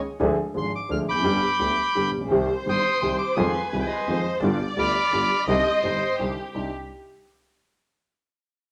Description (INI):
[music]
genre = tango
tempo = 171 BPM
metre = 3/4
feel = rubato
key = C harmonic minor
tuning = A4 = 440 Hz
[part]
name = dark concert grand piano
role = accompaniment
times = 0.2-6.7 s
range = G1 to Ab4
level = -28 LUFS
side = equal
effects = none
[part]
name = clear double bass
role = bass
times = 0.2-6.7 s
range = F1 to F2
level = -32 LUFS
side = equal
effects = none
[part]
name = bandoneon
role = melody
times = 0.6-6.2 s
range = C5 to G6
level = -27 LUFS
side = equal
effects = none
[part]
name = warm studio violin section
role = second line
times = 2.3-6.7 s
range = G4 to Eb5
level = -30 LUFS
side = equal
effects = none
[sound]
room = wet studio reverb, RT60 0.8 s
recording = none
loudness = -24 LUFS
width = mono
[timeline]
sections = 0.0-6.5 A section; 6.5-7.6 B section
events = none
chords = 0.2 Ddim; 1.2 G; 2.3 Cm; 3.4 Fm7; 4.4 G7; 5.5 Cmadd9